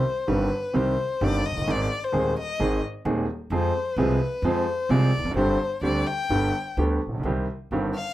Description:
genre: tango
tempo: 129 BPM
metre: 4/4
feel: rubato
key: C harmonic minor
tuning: A4 = 441 Hz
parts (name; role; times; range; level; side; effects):
- warm violin; second line; 0.0-8.1 s; B4 to G5; -28 LUFS; left 4 dB; none
- warm concert grand piano; accompaniment; 0.3-7.9 s; Eb1 to Ab4; -24 LUFS; right 1 dB; none
- upright bass; bass; 0.3-7.9 s; E1 to F2; -29 LUFS; equal; none
room: moderate small room reverb, RT60 0.5 s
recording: rough home demo mix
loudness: -22 LUFS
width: side -14 dB against mid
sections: 0.0-8.1 A section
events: violin solo 0.0-8.1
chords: 0.0 Cm; 1.7 Ab; 3.5 Fm; 5.4 Gsus4; 6.3 G; 7.2 Cm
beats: 0.28 0.74 1.21 | 1.67 2.13 2.60 3.05 | 3.51 3.97 4.43 4.90 | 5.36 5.83 6.30 6.77 | 7.25 7.71

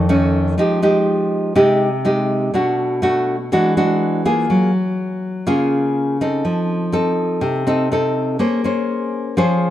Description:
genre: bossa nova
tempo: 123 BPM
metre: 4/4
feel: straight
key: unclear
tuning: A4 = 442 Hz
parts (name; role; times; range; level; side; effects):
- nylon-string guitar; solo; 0.0-9.7 s; F2 to C5; -15 LUFS; equal; none
room: moderate plate reverb, RT60 2.3 s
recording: dark, warm production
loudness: -15 LUFS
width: side -12 dB against mid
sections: 0.6-9.7 A section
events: none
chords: 0.0 F7b13; 0.6 Fm9; 2.5 Bm7; 3.5 E9; 4.5 Gbmaj9; 6.4 F7; 8.4 Bbm9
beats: 0.09 | 0.58 1.07 1.56 2.05 | 2.54 3.02 3.51 4.00 | 4.49 4.98 5.47 5.96 | 6.44 6.93 7.42 7.91 | 8.40 8.89 9.38

